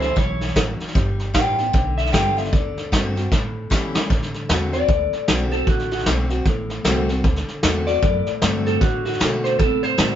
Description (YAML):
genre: rockabilly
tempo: 153 BPM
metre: 4/4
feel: swing 61% on 8ths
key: D mixolydian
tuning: A4 = 439 Hz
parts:
  - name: electric guitar through a small old amp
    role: melody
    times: 0.0-10.2 s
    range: E4 to G5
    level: -22 LUFS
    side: equal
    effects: none
  - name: picked steel-string acoustic guitar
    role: accompaniment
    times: 0.0-10.2 s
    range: A2 to F#4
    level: -26 LUFS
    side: left 2 dB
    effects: none
  - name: upright bass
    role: bass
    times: 0.0-10.2 s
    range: G1 to C#3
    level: -25 LUFS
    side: equal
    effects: none
  - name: vintage brush drum kit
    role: drums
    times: 0.0-10.1 s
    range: hi-hat, kick drum, snare drum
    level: -21 LUFS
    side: equal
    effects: none
room: light reverb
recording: band playing live in one room, nothing above 7.6 kHz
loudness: -18 LUFS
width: side -10 dB against mid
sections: 0.0-4.1 A section; 4.1-10.2 B section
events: drum fill 3.3-4.1; clean electric guitar solo 4.1-10.2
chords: 0.0 A; 1.0 G7; 2.5 D7; 3.3 A7; 4.1 D7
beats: 0.16 0.56 | 0.95 1.34 1.74 2.13 | 2.53 2.92 3.31 3.71 | 4.10 4.49 4.89 5.28 | 5.67 6.07 6.46 6.85 | 7.24 7.63 8.03 8.42 | 8.81 9.20 9.59 9.98